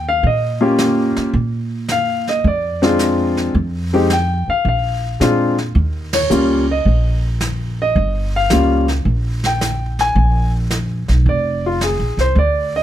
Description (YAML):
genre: jazz piano trio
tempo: 109 BPM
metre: 4/4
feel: swing 69% on 8ths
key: Bb mixolydian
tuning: A4 = 438 Hz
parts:
  - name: warm baby grand piano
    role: melody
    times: 0.0-12.8 s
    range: G3 to Ab5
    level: -16 LUFS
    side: left 1 dB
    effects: none
  - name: upright bass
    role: bass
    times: 0.0-12.8 s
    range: F1 to Bb2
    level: -18 LUFS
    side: equal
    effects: none
  - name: jazz brush drum kit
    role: drums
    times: 0.2-12.8 s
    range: brushed snare drum, hi-hat, kick drum, ride cymbal, snare drum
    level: -25 LUFS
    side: right 2 dB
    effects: none
room: little or no reverb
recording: close, detailed microphones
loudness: -14 LUFS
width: side -11 dB against mid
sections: 0.0-12.8 A section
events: band accent 6.0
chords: 0.0 Eb7; 1.3 Bb7; 3.5 N.C.; 4.7 Bb7; 5.8 Eb7; 10.2 Bb5